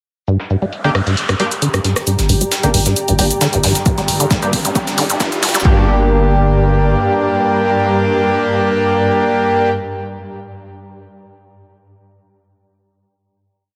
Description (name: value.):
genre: driving peak-time techno.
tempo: 134 BPM.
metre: 4/4.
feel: straight.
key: G minor.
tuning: A4 = 441 Hz.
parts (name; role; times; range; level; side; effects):
acid bass, saw; riff; 0.3-5.9 s; G2 to G3; -20 LUFS; equal; sidechain pumping, tape echo.
breakbeat sampler-style drum kit; drums; 0.3-5.6 s; hi-hat, shaker, snare drum; -26 LUFS; equal; high-pass filter on perc, low-pass filter on perc, high-pass filter on snare, low-pass filter on snare, high-pass filter on hats, low-pass filter on hats.
punchy analog drum machine; drums; 0.3-5.6 s; hi-hat, rim click, shaker; -22 LUFS; equal; overdrive, low-pass filter on hats, low-pass filter on perc, low-pass filter on snare.
noise sweep and riser; sound effects; 0.5-5.7 s; none; -28 LUFS; equal; none.
ethereal airy pad; texture; 1.1-9.9 s; G4 to Bb5; -26 LUFS; equal; ensemble chorus, built-in reverb, sidechain pumping.
sync-sweep polysynth; stabs; 0.8-9.7 s; Bb3 to G4; -18 LUFS; equal; chorus, sidechain pumping, tape echo.
swarming drone; drone; 3.3-9.7 s; G2; -25 LUFS; equal; built-in reverb, sidechain pumping.
growling 808-style bass; bass; 2.2-7.0 s; G1; -20 LUFS; equal; overdrive, sidechain pumping, low-pass filter.
electronic kick drum; drums; 3.9-5.7 s; none; -17 LUFS; equal; overdrive.
room: moderate stone room reverb, RT60 1.0 s.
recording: high-pass filter.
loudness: -15 LUFS.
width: mono.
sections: 0.3-2.1 intro; 2.1-5.7 build; 5.7-9.2 final chord.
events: noise sweep 0.5-2.1; build-up 2.1-5.7; riser 2.1-5.7; filter sweep on acid bass 2.1-5.7; filter sweep on analog polysynth 2.1-5.7.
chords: 0.3 Gm.